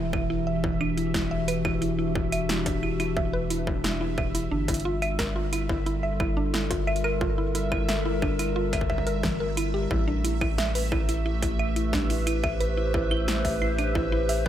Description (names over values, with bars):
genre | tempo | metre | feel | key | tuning
IDM | 89 BPM | 4/4 | straight | unclear | A4 = 442 Hz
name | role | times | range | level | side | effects
warbly tape-like pad | sustained chords | 0.0-14.5 s | E3 to C5 | -30 LUFS | left 1 dB | chorus, built-in reverb, shimmer reverb
mallet-like synth pluck | arpeggios | 0.0-14.5 s | E3 to E5 | -30 LUFS | right 1 dB | chorus, tape echo, shimmer reverb
round analog bass | bass | 0.0-14.5 s | E1 to A1 | -29 LUFS | equal | none
bubbling stepped-filter texture | texture | 0.0-14.5 s | E5 | -38 LUFS | right 3 dB | chorus, built-in reverb, shimmer reverb
electro analog drum machine | drums | 0.1-14.4 s | claves, hi-hat, snare drum | -33 LUFS | right 1 dB | overdrive
electronic kick drum | drums | 0.1-14.5 s | none | -31 LUFS | equal | distortion
room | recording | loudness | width
light reverb, digital ambience | none | -24 LUFS | side -11 dB against mid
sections
0.0-14.5 A section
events
none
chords
0.0 Em9; 4.5 Gm9; 9.9 Am9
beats
0.47 1.15 | 1.82 2.49 3.17 3.84 | 4.52 5.19 5.86 6.54 | 7.21 7.89 8.56 9.23 | 9.91 10.58 11.26 11.93 | 12.61 13.28 13.95